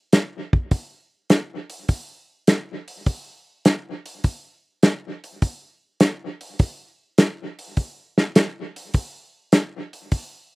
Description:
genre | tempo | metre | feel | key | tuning
jazz | 102 BPM | 4/4 | swing 69% on 8ths | none | none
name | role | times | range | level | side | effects
warm soul drum kit | drums | 0.1-10.3 s | hi-hat, kick drum, snare drum | -16 LUFS | equal | none
room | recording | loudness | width
light reverb | recorded outdoors, with no room sound | -20 LUFS | side -24 dB against mid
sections
0.0-10.6 A section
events
none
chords
none

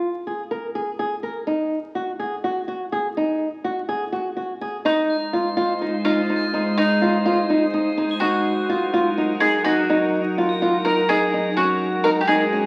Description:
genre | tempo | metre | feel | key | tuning
contemporary instrumental, chamber music in an uneven meter | 250 BPM (eighths) | 7/8 | straight | Eb dorian | A4 = 440 Hz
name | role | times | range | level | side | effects
flamenco guitar | arpeggios | 0.0-12.7 s | Db4 to Bb4 | -25 LUFS | equal | none
icy glass pad | sustained chords | 5.4-12.7 s | Gb3 to C5 | -27 LUFS | equal | chorus, built-in reverb
bowl-back mandolin | second line | 4.9-12.7 s | Eb4 to Bb4 | -24 LUFS | equal | none
crotales | texture | 5.1-11.0 s | Ab7 to C8 | -39 LUFS | equal | none
room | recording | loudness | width
wet recital hall reverb, RT60 1.8 s | very old 78 rpm record, vinyl crackle | -22 LUFS | mono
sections
0.0-4.9 A section; 4.9-12.7 B section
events
none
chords
0.0 N.C.; 1.5 Ebm; 4.9 Ab; 8.2 Ebm; 11.6 Gbadd9

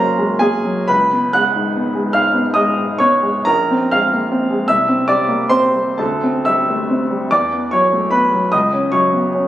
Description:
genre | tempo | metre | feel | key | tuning
classical, impressionist solo piano | 47 BPM (dotted quarters) | 6/8 | uneven beats, rubato | unclear | A4 = 438 Hz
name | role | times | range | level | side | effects
clear grand piano | solo | 0.0-9.5 s | Bb1 to Gb6 | -13 LUFS | equal | none
room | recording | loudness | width
moderate concert hall reverb, RT60 2.2 s | recorded on a phone in the room, studio reverb | -13 LUFS | side -13 dB against mid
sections
0.0-9.5 A section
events
none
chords
0.0 Gbadd9; 0.9 Db9sus4; 3.5 Bbsus2; 4.7 Csus2; 6.0 D9sus4; 7.3 E9sus4; 8.5 Db9sus4

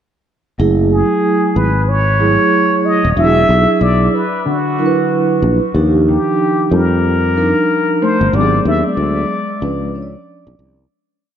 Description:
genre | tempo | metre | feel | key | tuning
hip hop, jazz-hop | 93 BPM | 4/4 | swing 62% on 16ths | unclear | A4 = 440 Hz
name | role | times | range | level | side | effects
vibraphone with soft mallets | accompaniment | 0.6-10.8 s | E#3 to D5 | -16 LUFS | right 2 dB | none
sustaining fretless electric bass | bass | 0.6-10.8 s | D#1 to E#2 | -15 LUFS | left 1 dB | none
trumpet with plunger mute | melody | 0.9-10.2 s | F#4 to E5 | -17 LUFS | left 1 dB | ping-pong delay
mellow electric guitar | second line | 4.5-10.1 s | D3 to D4 | -22 LUFS | left 2 dB | lush chorus
room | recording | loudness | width
moderate plate reverb, RT60 3.5 s | dreamy mix soaked in reverb | -12 LUFS | side -9 dB against mid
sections
0.6-10.9 A section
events
fade-out 8.3-10.9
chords
0.6 F#m9; 3.2 E9; 5.7 D#maj9; 8.3 G#m7b5; 9.6 C#7b9

